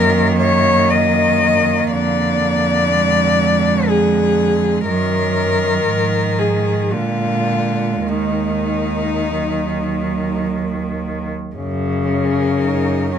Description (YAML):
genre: classical, lyrical piece for cello ensemble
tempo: 49-62 BPM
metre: 3/4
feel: rubato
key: Eb minor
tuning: A4 = 439 Hz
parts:
  - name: warm cello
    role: melody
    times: 0.0-13.2 s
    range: Eb4 to Eb5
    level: -18 LUFS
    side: left 4 dB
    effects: none
  - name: warm cello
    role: second line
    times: 0.0-13.2 s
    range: F3 to D#4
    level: -21 LUFS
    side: right 6 dB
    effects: none
  - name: rich cello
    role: accompaniment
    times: 0.0-13.2 s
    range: C#3 to F#3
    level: -22 LUFS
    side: left 2 dB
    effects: none
  - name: rich cello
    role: bass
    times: 0.0-13.2 s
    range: Eb2 to Bb2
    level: -21 LUFS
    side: right 2 dB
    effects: none
room: moderate studio reverb, RT60 0.5 s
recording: none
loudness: -15 LUFS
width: side -8 dB against mid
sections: 0.0-11.6 A section; 11.6-13.2 B section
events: none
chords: 0.0 Ebm/Gb; 1.9 Ddim/F; 4.9 Ebm/Gb; 5.9 Bb7sus4/Ab; 6.9 Bb7; 8.1 Ebm; 11.6 F#